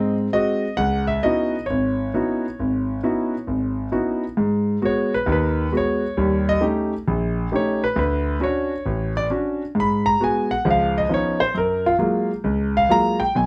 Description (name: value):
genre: solo jazz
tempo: 134 BPM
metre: 4/4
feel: swing 65% on 8ths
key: unclear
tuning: A4 = 439 Hz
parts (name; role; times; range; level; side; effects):
- warm concert grand piano; solo; 0.0-13.5 s; G#1 to B5; -21 LUFS; equal; none
room: moderate club reverb, RT60 0.5 s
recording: none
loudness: -21 LUFS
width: mono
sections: 0.0-4.4 A section; 4.4-13.5 B section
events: grand piano solo 4.4-13.5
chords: 0.0 G#7; 0.8 C#m11; 4.4 G#m7; 6.2 D#7#11; 8.0 Dmaj7; 9.8 G#m7; 10.7 C#9; 11.5 F#maj9